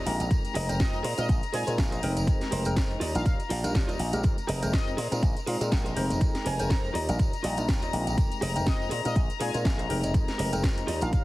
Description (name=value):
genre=filtered disco house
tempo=122 BPM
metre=4/4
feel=swing 56% on 16ths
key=F dorian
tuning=A4 = 444 Hz
part: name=warm chamber string section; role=sustained chords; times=0.0-11.2 s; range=Bb5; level=-37 LUFS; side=left 6 dB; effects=sidechain pumping
part: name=direct-recorded clean electric guitar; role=riff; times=0.0-11.2 s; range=F4 to G5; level=-36 LUFS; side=right 2 dB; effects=sidechain pumping
part: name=slap bass with an envelope filter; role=bass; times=0.0-11.2 s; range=F1 to Bb2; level=-31 LUFS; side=equal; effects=sidechain pumping
part: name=bright tine electric piano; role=accompaniment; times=0.1-11.2 s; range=G3 to G5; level=-33 LUFS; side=equal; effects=phaser, sidechain pumping
part: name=house drum kit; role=drums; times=0.1-11.2 s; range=hi-hat, snare drum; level=-36 LUFS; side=equal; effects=sidechain pumping on hats
part: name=tambourine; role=percussion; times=0.2-11.2 s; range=none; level=-42 LUFS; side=right 4 dB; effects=sidechain pumping on perc
part: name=electronic kick drum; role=drums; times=0.3-11.2 s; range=none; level=-26 LUFS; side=equal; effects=none
part: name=analog synth brass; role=melody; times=0.8-11.2 s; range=Eb5 to Bb5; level=-39 LUFS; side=equal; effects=chorus, sidechain pumping
room=light reverb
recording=heavily compressed radio sound, multiband compression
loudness=-24 LUFS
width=side -18 dB against mid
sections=0.0-11.2 A section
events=clean electric guitar fill 7.4-8.2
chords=0.3 Fm11; 1.0 Bb9sus4; 2.0 Fm11; 3.0 Ebmaj9; 4.2 Fm11; 5.0 Bb9sus4; 6.0 Fm11; 6.9 Ebmaj9; 8.2 Fm11; 8.9 Bb9sus4; 9.9 Fm11